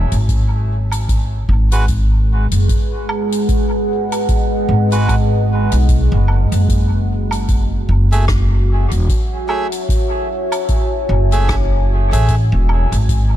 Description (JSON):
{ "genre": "ambient dub", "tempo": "75 BPM", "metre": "4/4", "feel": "swing 58% on 16ths", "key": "F# dorian", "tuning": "A4 = 440 Hz", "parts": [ { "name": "deep dark ambient pad", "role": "sustained chords", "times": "0.0-13.4 s", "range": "G#3 to A5", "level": "-21 LUFS", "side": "equal", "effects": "chorus, built-in reverb, vintage 12-bit sampler grit" }, { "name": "upright bass", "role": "bass", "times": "0.0-13.4 s", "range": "E1 to B1", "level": "-14 LUFS", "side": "equal", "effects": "none" }, { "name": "soft-mallet drum kit", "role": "drums", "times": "0.1-13.3 s", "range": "hi-hat, rim click, woodblock", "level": "-28 LUFS", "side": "right 1 dB", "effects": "dub echo" }, { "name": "electronic kick drum", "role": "drums", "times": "0.3-13.3 s", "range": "none", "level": "-18 LUFS", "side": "equal", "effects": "none" }, { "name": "melodica", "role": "stabs", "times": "1.7-12.4 s", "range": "G#3 to E5", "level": "-26 LUFS", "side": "right 3 dB", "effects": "dub echo" } ], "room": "small room ambience", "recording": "dark, warm production", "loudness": "-13 LUFS", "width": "side -12 dB against mid", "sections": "0.0-13.4 A section", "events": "none", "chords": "0.3 G#m7; 6.7 F#m9" }